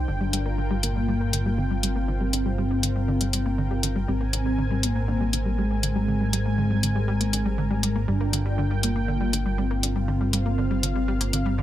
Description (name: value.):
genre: melodic techno.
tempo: 120 BPM.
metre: 4/4.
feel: straight.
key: G phrygian.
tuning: A4 = 439 Hz.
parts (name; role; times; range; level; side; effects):
fat analog lead; melody; 0.0-11.6 s; Ab3 to D4; -28 LUFS; left 1 dB; ensemble chorus, ping-pong delay.
lush unison pad; sustained chords; 0.0-11.6 s; C4 to Ab5; -34 LUFS; equal; chorus.
analog pluck; arpeggios; 0.0-11.6 s; D3 to Bb3; -30 LUFS; equal; chorus, digital delay.
fat analog bass; bass; 0.0-11.6 s; G1 to Ab1; -25 LUFS; equal; none.
electronic hi-hat; drums; 0.3-11.4 s; none; -26 LUFS; left 2 dB; none.
room: digital ambience.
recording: none.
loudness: -22 LUFS.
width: side -12 dB against mid.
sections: 0.0-11.6 A section.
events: filter sweep on synth arpeggio sound 0.0-11.6.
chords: 0.1 Gm7; 4.1 Abadd9; 8.1 Gm7.